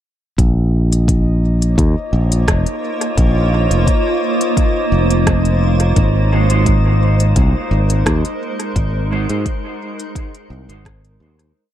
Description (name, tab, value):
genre	ambient dub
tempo	86 BPM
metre	4/4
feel	straight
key	Bb minor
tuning	A4 = 439 Hz
part	granular cloud pad	sustained chords	1.7-11.6 s	Ab3 to Db5	-21 LUFS	right 2 dB	built-in reverb
part	modern bright fingered electric bass	bass	0.4-11.5 s	F1 to Ab2	-14 LUFS	equal	none
part	electronic kick drum	drums	0.4-11.0 s	none	-17 LUFS	equal	none
part	organic electronic drum kit	drums	0.4-11.5 s	hi-hat, rim click	-23 LUFS	equal	dub echo
part	drifting glass-harmonics texture	texture	0.9-11.6 s	Eb4 to Eb5	-25 LUFS	left 2 dB	chorus, built-in reverb
part	mellow electric guitar	stabs	6.3-10.8 s	Ab3 to C5	-25 LUFS	right 5 dB	wide subtle chorus, dub echo
room	little or no reverb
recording	echo-heavy mix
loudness	-13 LUFS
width	side -12 dB against mid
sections	0.4-11.6 groove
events	fade-out 7.8-11.6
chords	0.4 Bbm; 6.0 Ab7